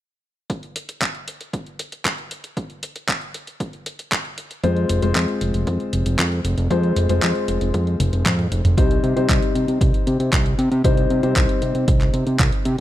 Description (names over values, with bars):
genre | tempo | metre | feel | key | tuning
italo disco | 116 BPM | 4/4 | straight | C minor | A4 = 440 Hz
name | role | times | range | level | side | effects
clean 12-bit digital drum machine | drums | 0.5-12.8 s | handclaps, hi-hat, toms | -24 LUFS | right 1 dB | studio reverb
electronic kick drum | drums | 0.5-12.5 s | none | -22 LUFS | right 1 dB | high-pass filter on kick, studio reverb
dark grand piano | stabs | 4.6-12.8 s | G3 to C5 | -24 LUFS | left 4 dB | tape echo
fat analog bass | bass | 4.6-12.8 s | F1 to C3 | -20 LUFS | equal | none
room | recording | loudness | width
digital ambience | dry, close 1970s-style studio recording | -17 LUFS | side -14 dB against mid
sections
0.5-8.8 A section; 8.8-12.8 B section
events
drum fill 8.0-8.8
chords
0.5 N.C.; 4.6 Fm; 8.8 Cm